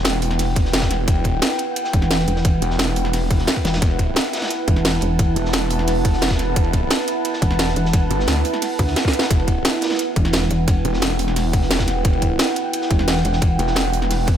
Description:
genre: dark technical drum and bass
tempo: 175 BPM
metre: 4/4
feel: straight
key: E minor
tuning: A4 = 440 Hz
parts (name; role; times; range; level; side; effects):
- deep dark ambient pad; sustained chords; 0.0-14.4 s; E4 to A5; -23 LUFS; right 2 dB; chorus, built-in reverb, sidechain pumping
- snarling distorted saw bass; bass; 0.0-14.4 s; E1 to D2; -21 LUFS; equal; none
- crunchy breakbeat drum kit; drums; 0.0-14.4 s; hi-hat, ride cymbal, snare drum; -30 LUFS; equal; high-pass filter on cymbals, studio reverb, high-pass filter on hats, high-pass filter on snare, high-pass filter on room
- drum and bass drum kit; drums; 0.0-14.3 s; hi-hat, snare drum; -22 LUFS; right 1 dB; overdrive, studio reverb
- electronic kick drum; drums; 0.6-14.3 s; none; -19 LUFS; equal; overdrive, studio reverb
- pulsing pluck wobble bass; bass; 1.9-5.3, 7.4-10.8, 12.9-13.6 s; E1 to D2; -20 LUFS; equal; chorus
room: light reverb, small room ambience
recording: none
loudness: -16 LUFS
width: side -10 dB against mid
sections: 0.0-14.4 A section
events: drum fill 9.0-9.3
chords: 0.0 Emadd9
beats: 0.05 0.39 0.73 | 1.08 1.42 1.76 2.11 | 2.45 2.79 3.13 3.48 | 3.82 4.16 4.51 4.85 | 5.19 5.54 5.88 6.22 | 6.56 6.91 7.25 7.59 | 7.93 8.28 8.62 8.96 | 9.31 9.65 9.99 10.34 | 10.68 11.02 11.36 11.71 | 12.05 12.39 12.73 13.08 | 13.42 13.76 14.11

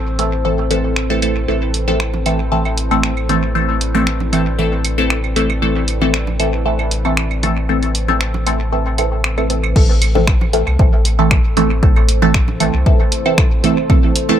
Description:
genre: dub techno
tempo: 116 BPM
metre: 4/4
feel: straight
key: A minor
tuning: A4 = 440 Hz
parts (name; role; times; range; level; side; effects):
- deep dark ambient pad; sustained chords; 0.0-14.4 s; C4 to D5; -27 LUFS; right 1 dB; chorus, built-in reverb, sidechain pumping
- pure sine sub bass; bass; 0.0-12.8 s; A1 to C2; -19 LUFS; equal; sidechain pumping
- bubbling stepped-filter texture; texture; 0.0-14.4 s; A3 to C5; -30 LUFS; left 1 dB; chorus, built-in reverb, sidechain pumping
- filtered dub chord stab; stabs; 0.2-14.4 s; E3 to A4; -17 LUFS; right 1 dB; phaser, sidechain pumping, dub echo
- punchy analog drum machine; drums; 0.2-14.3 s; crash cymbal, finger snaps, hi-hat; -22 LUFS; equal; dub echo
- congas and claves; percussion; 1.9-14.4 s; none; -27 LUFS; right 7 dB; sidechain pumping on perc, dub echo
- electronic kick drum; drums; 9.8-14.0 s; none; -13 LUFS; equal; none
room: light reverb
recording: echo-heavy mix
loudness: -13 LUFS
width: side -10 dB against mid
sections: 0.0-9.8 A section; 9.8-14.4 B section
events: none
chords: 0.0 Am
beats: 0.45 0.97 | 1.48 2.00 2.52 3.04 | 3.55 4.07 4.59 5.10 | 5.62 6.14 6.66 7.17 | 7.69 8.21 8.72 9.24 | 9.76 10.28 10.79 11.31 | 11.83 12.35 12.86 13.38 | 13.90

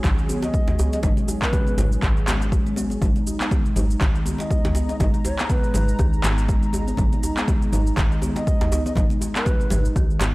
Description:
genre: afro house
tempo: 121 BPM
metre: 4/4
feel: swing 56% on 16ths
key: G# minor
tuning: A4 = 440 Hz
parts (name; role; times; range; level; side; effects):
- warm analog pad; sustained chords; 0.0-10.3 s; F#3 to A#5; -32 LUFS; right 1 dB; chorus, sidechain pumping
- marimba with soft mallets; arpeggios; 0.0-10.3 s; D#3 to D#4; -29 LUFS; equal; sidechain pumping, tape echo
- woody FM bass; bass; 0.0-10.3 s; G#1 to D#2; -23 LUFS; equal; sidechain pumping
- deep house drum kit; drums; 0.0-10.3 s; cabasa, handclaps, toms; -29 LUFS; equal; overdrive
- electronic kick drum; drums; 0.0-10.1 s; none; -22 LUFS; equal; overdrive
- congas; percussion; 0.0-10.3 s; none; -32 LUFS; left 1 dB; none
- djembe; percussion; 0.0-10.3 s; none; -28 LUFS; equal; none
- bass bansuri; melody; 0.4-9.9 s; B4 to D#5; -31 LUFS; equal; tape echo
room: small room ambience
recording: dry, gritty hardware recording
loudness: -19 LUFS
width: side -21 dB against mid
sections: 0.0-10.3 A section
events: none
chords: 0.0 F#5/G#; 3.0 G#m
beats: 0.04 0.54 | 1.03 1.53 2.03 2.52 | 3.02 3.51 4.01 4.51 | 5.00 5.50 5.99 6.49 | 6.99 7.48 7.98 8.47 | 8.97 9.46 9.96

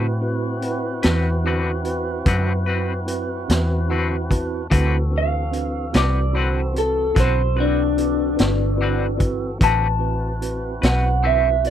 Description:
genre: slow blues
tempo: 49 BPM (dotted quarters)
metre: 12/8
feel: straight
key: D mixolydian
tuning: A4 = 440 Hz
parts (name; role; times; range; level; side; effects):
- clean electric guitar; accompaniment; 0.0-11.5 s; D3 to B4; -26 LUFS; left 5 dB; harmonic tremolo
- tine electric piano; accompaniment; 0.0-11.7 s; C4 to B5; -28 LUFS; right 3 dB; medium stereo tremolo
- tonewheel organ; sustained chords; 0.0-11.7 s; E3 to B4; -31 LUFS; equal; slow rotary speaker
- vintage muted fingered electric bass; bass; 0.0-11.7 s; G1 to A2; -22 LUFS; equal; none
- raw garage drum kit; drums; 0.6-11.7 s; hi-hat, kick drum, snare drum; -20 LUFS; equal; none
- electric guitar through a small old amp; melody; 5.2-11.7 s; D4 to A5; -21 LUFS; equal; phaser
room: little or no reverb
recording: dry, close 1970s-style studio recording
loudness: -18 LUFS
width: side -10 dB against mid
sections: 0.0-11.7 A section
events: tine electric piano fill 3.5-4.7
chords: 0.0 D13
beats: 1.05 2.27 3.50 | 4.72 5.95 7.17 8.39 | 9.62 10.84

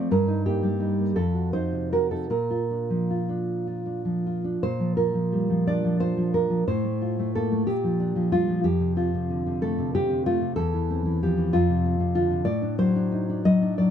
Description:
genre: romantic piece for solo classical guitar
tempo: 50-65 BPM (dotted quarters)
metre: 6/8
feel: rubato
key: Bb major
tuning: A4 = 441 Hz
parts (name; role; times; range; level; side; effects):
- nylon-string guitar; solo; 0.0-13.9 s; E2 to Eb5; -22 LUFS; equal; none
room: light reverb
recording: close, detailed microphones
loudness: -22 LUFS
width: side -9 dB against mid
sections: 0.0-4.6 A section; 4.6-13.9 B section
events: none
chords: 0.1 Eb/G; 1.2 F5; 2.3 Bb; 6.7 F/A; 7.7 Bb; 8.7 F; 10.6 C/E; 11.5 F5; 12.5 D7/A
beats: | 0.12 1.17 | 2.31 3.48 | 4.62 5.66 | 6.67 7.67 | 8.65 9.63 | 10.58 11.54 | 12.47 13.46

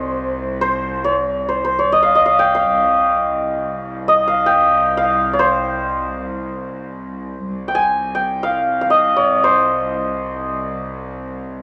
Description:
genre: Persian modal ensemble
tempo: free time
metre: none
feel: none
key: C dastgah shur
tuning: A4 = 440 Hz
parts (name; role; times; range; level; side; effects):
- santur; melody; 0.0-11.6 s; C5 to Ab5; -18 LUFS; equal; none
- bright symphonic cello section; drone; 0.0-11.6 s; C2; -30 LUFS; equal; none
room: moderate large studio reverb, RT60 1.2 s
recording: none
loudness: -17 LUFS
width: mono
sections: 0.0-11.6 A section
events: none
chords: none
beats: free time

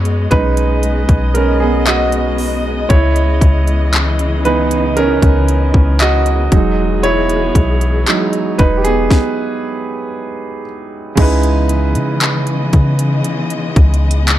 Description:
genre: contemporary R&B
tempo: 58 BPM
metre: 4/4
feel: straight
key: C# minor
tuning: A4 = 440 Hz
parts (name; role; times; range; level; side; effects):
- warm grand piano; accompaniment; 0.0-14.4 s; C#3 to D#5; -16 LUFS; right 3 dB; none
- dark studio string section; sustained chords; 0.0-14.4 s; C#3 to D#5; -22 LUFS; left 3 dB; sidechain pumping
- soft 808-style bass; bass; 0.0-14.4 s; E1 to C#3; -15 LUFS; equal; none
- trap drum kit; drums; 0.1-14.4 s; crash cymbal, handclaps, hi-hat, kick drum, snare drum; -13 LUFS; equal; none
room: digital ambience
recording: dark, warm production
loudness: -11 LUFS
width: side -13 dB against mid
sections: 0.0-11.2 A section; 11.2-14.4 B section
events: grand piano solo 0.0-11.2; stop 9.1-11.2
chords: 0.0 B6; 2.9 C#m7; 6.5 Emaj9; 11.2 C#m7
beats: 0.83 1.86 | 2.90 3.93 4.97 6.00 | 7.04 8.07 9.11 10.14 | 11.18 12.21 13.24 14.28

